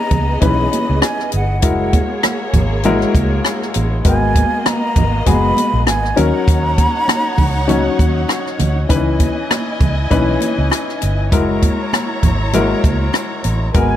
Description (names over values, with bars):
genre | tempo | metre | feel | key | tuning
lush 1970s-style soul | 99 BPM | 4/4 | swing 54% on 16ths | unclear | A4 = 440 Hz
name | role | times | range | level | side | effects
breathy concert flute | melody | 0.0-8.0, 13.8-14.0 s | F#5 to B5 | -20 LUFS | right 1 dB | none
dark symphonic string section | second line | 0.0-14.0 s | A#3 to A#5 | -24 LUFS | equal | none
clear concert grand piano | accompaniment | 0.0-14.0 s | D#3 to C#5 | -20 LUFS | left 4 dB | none
vintage muted fingered electric bass | bass | 0.1-14.0 s | F#1 to D#2 | -18 LUFS | equal | none
compact cocktail drum kit | drums | 0.1-13.9 s | hi-hat, kick drum, rim click | -17 LUFS | equal | none
congas | percussion | 0.1-13.9 s | none | -24 LUFS | right 3 dB | none
room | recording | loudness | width
light reverb, studio reverb | none | -13 LUFS | side -11 dB against mid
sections
0.0-14.0 A section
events
none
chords
0.0 C#m9; 1.6 F#9; 4.1 G#m9; 6.2 D#m7; 8.9 C#m9; 11.3 F#9